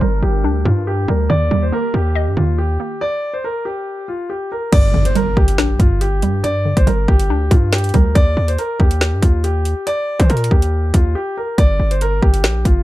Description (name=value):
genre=hip hop, drill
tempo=140 BPM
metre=4/4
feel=half-time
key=G minor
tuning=A4 = 440 Hz
part: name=warm concert grand piano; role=melody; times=0.0-12.8 s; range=F4 to D5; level=-21 LUFS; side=left 1 dB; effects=low-pass filter, ping-pong delay
part: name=hollow square pluck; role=accompaniment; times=0.0-8.2 s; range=G2 to Eb5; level=-21 LUFS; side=right 2 dB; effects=chorus, low-pass filter
part: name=hollow soft pad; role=sustained chords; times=0.0-3.0 s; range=Eb3 to Bb4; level=-27 LUFS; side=right 1 dB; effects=ensemble chorus, low-pass filter
part: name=hard-hitting 808-style bass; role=bass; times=0.0-12.8 s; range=G1 to Eb3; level=-17 LUFS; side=equal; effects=none
part: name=drill drum kit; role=drums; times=4.7-12.8 s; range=crash cymbal, hi-hat, kick drum, snare drum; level=-14 LUFS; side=equal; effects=none
part: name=impact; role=sound effects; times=4.9-6.4 s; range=none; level=-25 LUFS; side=equal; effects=none
room=little or no reverb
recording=dark, warm production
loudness=-14 LUFS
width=side -16 dB against mid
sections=0.0-4.7 A section; 4.7-12.8 B section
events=filter sweep 0.0-4.7; stop 3.0-4.7; impact 4.7-6.4; break 11.2-11.6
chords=0.0 Gm; 1.3 Eb; 4.7 G5; 8.2 Eb; 11.6 Gm